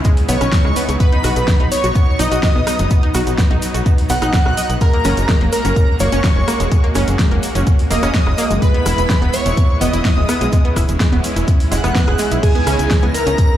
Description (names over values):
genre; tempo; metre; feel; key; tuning
progressive house; 126 BPM; 4/4; straight; B major; A4 = 441 Hz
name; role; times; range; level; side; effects
supersaw pad; sustained chords; 0.0-13.6 s; C#3 to F#4; -25 LUFS; right 1 dB; vintage 12-bit sampler grit, sidechain pumping
deep house drum kit; drums; 0.0-13.5 s; crash cymbal, hi-hat, rim click, snare drum; -24 LUFS; equal; sidechain pumping on hats, sidechain pumping on cymbals
electronic kick drum; drums; 0.0-13.5 s; none; -15 LUFS; equal; none
egg shaker; percussion; 0.0-13.5 s; none; -31 LUFS; right 1 dB; none
wide unison pluck; arpeggios; 0.1-13.3 s; G#3 to D#5; -22 LUFS; equal; sidechain pumping, ping-pong delay
plucky unison lead; melody; 0.3-13.6 s; G#4 to F#5; -23 LUFS; right 1 dB; sidechain pumping, ping-pong delay
airy dreamy lead; second line; 0.3-13.6 s; G#5 to F#6; -25 LUFS; left 1 dB; chorus, sidechain pumping, ping-pong delay
tight sequencer bass; bass; 0.3-13.3 s; E1 to C#2; -18 LUFS; equal; sidechain pumping
backwards swelling texture; texture; 13.0-13.6 s; A#6; -32 LUFS; left 4 dB; built-in reverb, sidechain pumping
room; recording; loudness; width
light reverb, digital ambience; played on a big sound system in a bare room, large studio reverb; -13 LUFS; side -12 dB against mid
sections
0.0-13.6 A section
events
none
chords
0.0 C#m7; 1.0 B; 4.8 F#add9; 8.6 E; 12.4 C#m7